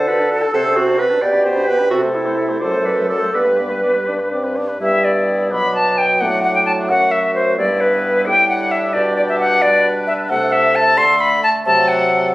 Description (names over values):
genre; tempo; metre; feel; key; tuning
quick classical-period movement for wind quintet; 87 BPM (dotted quarters); 6/8; rubato; G major; A4 = 440 Hz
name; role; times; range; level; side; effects
bright concert flute; melody; 0.0-12.3 s; G4 to C6; -16 LUFS; left 1 dB; none
warm oboe; second line; 0.0-12.3 s; D4 to B5; -26 LUFS; equal; none
clear French horn; accompaniment; 0.0-12.3 s; F#3 to F#4; -26 LUFS; equal; none
warm clarinet; accompaniment; 0.0-12.0 s; A3 to D5; -21 LUFS; right 2 dB; none
warm bassoon; bass; 0.0-12.3 s; F#2 to D3; -21 LUFS; equal; none
room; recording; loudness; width
moderate recital hall reverb, RT60 1.3 s; recorded on a phone in the room, club reverb, compression; -13 LUFS; side -18 dB against mid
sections
0.0-4.8 A section; 4.8-12.3 A section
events
none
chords
0.0 D; 0.5 D7/C; 1.2 G/B; 1.9 Am/C; 2.6 D7/F#; 3.3 G; 6.2 D/A; 7.6 G; 8.9 G/B; 10.3 Am/C; 11.0 D5; 11.7 F#dim/C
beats
| 0.55 1.22 | 1.91 2.62 | 3.34 4.08 | 4.81 5.51 | 6.21 6.90 | 7.58 8.26 | 8.94 9.62 | 10.30 10.98 | 11.66 12.34